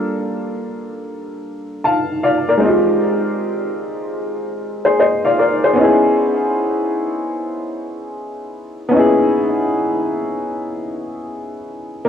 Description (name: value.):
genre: hip hop.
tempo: 76 BPM.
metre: 4/4.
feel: swing 64% on 16ths.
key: unclear.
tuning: A4 = 440 Hz.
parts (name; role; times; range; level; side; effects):
warm upright piano; solo; 0.0-12.1 s; G3 to A5; -16 LUFS; left 1 dB; cassette tape, low-pass filter, analog delay.
room: moderate booth ambience, RT60 0.2 s.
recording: home recording on cassette.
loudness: -15 LUFS.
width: side -8 dB against mid.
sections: 0.0-5.8 A section; 5.8-12.1 B section.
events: none.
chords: 0.0 Gm9; 2.6 Fm9; 5.8 Dbm9.